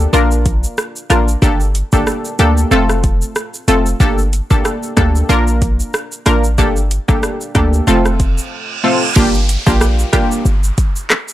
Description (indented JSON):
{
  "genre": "dancehall",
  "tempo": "93 BPM",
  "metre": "4/4",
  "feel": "swing 56% on 16ths",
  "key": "G minor",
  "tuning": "A4 = 440 Hz",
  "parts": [
    { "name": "punchy chord stab", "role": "accompaniment", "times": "0.0-10.4 s", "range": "A3 to Bb4", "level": "-16 LUFS", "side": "equal", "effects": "chorus" },
    { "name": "warm 808-style bass", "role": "bass", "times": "0.0-10.7 s", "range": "F1 to D2", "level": "-14 LUFS", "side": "equal", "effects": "none" },
    { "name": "afro-pop drum kit", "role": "drums", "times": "0.1-11.3 s", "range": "crash cymbal, handclaps, hi-hat, kick drum, rim click, shaker", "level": "-16 LUFS", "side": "equal", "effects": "overdrive" },
    { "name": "reverse cymbal and downlifter", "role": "sound effects", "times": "8.3-11.3 s", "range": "none", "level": "-22 LUFS", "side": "right 4 dB", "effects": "none" }
  ],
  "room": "little or no reverb",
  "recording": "dry, gritty hardware recording, transformer saturation",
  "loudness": "-12 LUFS",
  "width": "side -14 dB against mid",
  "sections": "0.0-9.2 A section; 9.2-11.3 B section",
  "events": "reverse cymbal 8.3-9.2",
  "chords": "0.1 Bb; 1.4 Gmadd9; 2.7 F; 4.0 Gmadd9; 5.3 Bb; 6.6 Gmadd9; 7.9 F; 9.2 Gm7"
}